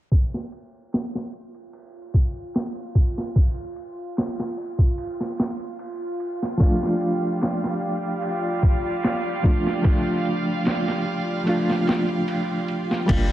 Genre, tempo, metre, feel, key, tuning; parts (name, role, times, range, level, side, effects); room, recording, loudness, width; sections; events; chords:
trip hop; 74 BPM; 4/4; straight; A4 = 440 Hz
boom bap sampler-style drum kit; drums; 0.1-13.3 s; crash cymbal, hi-hat, kick drum, ride cymbal, snare drum; -22 LUFS; equal; overdrive, low-pass filter on cymbals, vintage 12-bit sampler grit, low-pass filter on kick, low-pass filter on snare, low-pass filter on hats, low-pass filter on room
bowed-like drone; texture; 1.3-13.3 s; F4; -32 LUFS; right 2 dB; built-in reverb
reed electric piano; accompaniment; 6.6-13.3 s; F3 to F4; -24 LUFS; equal; fast tremolo, harmonic tremolo, low-pass filter, tape echo
rich chamber violin section; sustained chords; 6.6-13.0 s; G3 to F5; -29 LUFS; right 2 dB
electric guitar at the edge of break-up; arpeggios; 13.1-13.3 s; G3; -28 LUFS; left 4 dB; spring reverb
soft dub sub bass; bass; 13.1-13.3 s; G1; -22 LUFS; equal
digital ambience; vinyl crackle, low-pass filter; -21 LUFS; side -13 dB against mid
0.1-13.1 A section
filter sweep 0.1-13.1
0.1 N.C.; 6.6 Dm